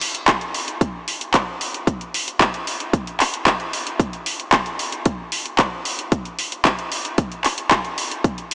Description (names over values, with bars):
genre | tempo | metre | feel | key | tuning
nu-disco | 113 BPM | 4/4 | straight | none | none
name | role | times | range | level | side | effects
pop drum kit | drums | 0.0-8.5 s | handclaps, hi-hat | -20 LUFS | equal | none
electronic kick drum | drums | 0.3-8.4 s | none | -21 LUFS | equal | none
room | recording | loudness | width
wet cathedral reverb, RT60 4.3 s | dreamy mix soaked in reverb, small speaker sound | -19 LUFS | side -26 dB against mid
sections
0.0-8.5 A section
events
none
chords
none